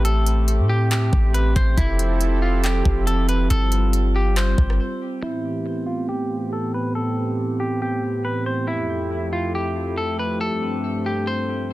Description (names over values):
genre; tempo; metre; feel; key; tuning
hip hop, atmospheric cloud-rap; 139 BPM; 4/4; half-time; A minor; A4 = 439 Hz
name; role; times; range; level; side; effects
semi-hollow electric guitar; melody; 0.0-11.7 s; E4 to C5; -26 LUFS; left 1 dB; low-pass filter, tape echo
warm analog pad; sustained chords; 0.0-11.7 s; F2 to A4; -24 LUFS; right 1 dB; chorus, sidechain pumping, low-pass filter
warm 808-style bass; bass; 0.0-4.8 s; F1 to A2; -19 LUFS; equal; none
trap drum kit; drums; 0.0-4.8 s; handclaps, hi-hat, kick drum, rim click; -23 LUFS; equal; overdrive
room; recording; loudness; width
digital ambience; dense, heavily limited modern master; -19 LUFS; side -17 dB against mid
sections
0.0-5.2 A section; 5.2-11.7 B section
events
break 4.8-5.2; filter sweep 5.2-11.7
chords
0.0 Am7; 1.8 Fmaj7; 3.5 G7sus4; 5.2 Am7; 8.7 Fmaj7; 10.4 G7sus4